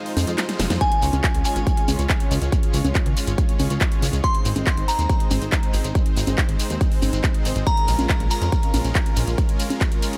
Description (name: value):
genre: uplifting trance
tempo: 140 BPM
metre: 4/4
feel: straight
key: Ab major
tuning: A4 = 440 Hz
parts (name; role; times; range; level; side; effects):
- supersaw pad; sustained chords; 0.0-10.2 s; Ab3 to Db5; -31 LUFS; equal; sidechain pumping
- big-room dance drum kit; drums; 0.1-10.2 s; congas, handclaps, hi-hat, ride cymbal, snare drum; -29 LUFS; equal; sidechain pumping on hats, sidechain pumping on perc, sidechain pumping on cymbals
- plucky analog bass; bass; 0.2-9.4 s; F1 to F2; -26 LUFS; equal; sidechain pumping
- shekere; percussion; 0.2-10.2 s; none; -35 LUFS; equal; none
- glassy synth bell; second line; 0.8-9.1 s; Ab5 to C6; -29 LUFS; equal; chorus, phaser, vintage 12-bit sampler grit, digital delay
- electronic kick drum; drums; 0.8-9.9 s; none; -23 LUFS; equal; none
room: light reverb, digital ambience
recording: none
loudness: -21 LUFS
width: mono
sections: 0.0-10.2 A section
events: break 0.0-0.8; drum fill 0.4-0.8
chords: 0.0 Fm7; 0.8 Db; 4.2 Ab; 7.7 Bbm7